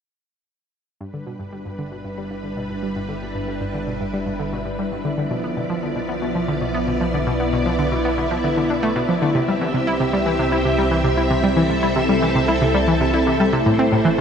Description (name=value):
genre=ambient, sequencer-driven space music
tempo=115 BPM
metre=4/4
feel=straight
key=unclear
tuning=A4 = 439 Hz
part: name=string machine, full ensemble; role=sustained chords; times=1.0-14.2 s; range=F3 to E5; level=-22 LUFS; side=equal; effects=ensemble chorus, shimmer reverb
part: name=analog pluck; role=riff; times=1.0-14.2 s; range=G2 to E4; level=-22 LUFS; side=equal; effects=chorus, ping-pong delay
part: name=analog drone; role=bass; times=1.8-14.2 s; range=G1 to C2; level=-29 LUFS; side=equal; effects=chorus, phaser
part: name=wind-like tuned noise texture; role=texture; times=2.2-14.2 s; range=E4 to E5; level=-28 LUFS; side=right 1 dB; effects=built-in reverb, shimmer reverb
room=wet huge ambient reverb, RT60 8.9 s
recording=none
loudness=-18 LUFS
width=side -7 dB against mid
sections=1.0-14.2 A section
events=fade-in on synth arpeggio sound 1.0-14.2; fade-in on string machine 1.0-14.2; fade-in on synth drone 1.0-14.2; fade-in on synth texture 1.0-14.2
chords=1.0 G; 5.2 Bdim; 9.4 C; 13.5 Am